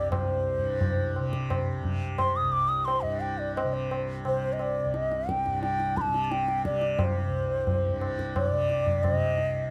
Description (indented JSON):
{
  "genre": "indian classical, Hindustani",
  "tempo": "87 BPM",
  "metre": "5/4",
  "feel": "straight",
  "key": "unclear",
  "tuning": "A4 = 440 Hz",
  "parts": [
    { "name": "mellow bansuri", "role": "melody", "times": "0.0-9.7 s", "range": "C5 to Eb6", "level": "-30 LUFS", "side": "equal", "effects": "none" },
    { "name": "tanpura", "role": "drone", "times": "0.0-9.7 s", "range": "C2 to C3", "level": "-35 LUFS", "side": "equal", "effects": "none" },
    { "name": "tabla", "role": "percussion", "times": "0.1-9.6 s", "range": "none", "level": "-32 LUFS", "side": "equal", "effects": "none" }
  ],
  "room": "light reverb",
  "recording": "close, detailed microphones",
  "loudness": "-28 LUFS",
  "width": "mono",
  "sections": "0.0-9.7 A section",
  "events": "none",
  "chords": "none",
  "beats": "| 0.11 0.81 1.50 2.19 2.88 | 3.56 4.25 4.94 5.62 6.31 | 6.99 7.67 8.36 9.04"
}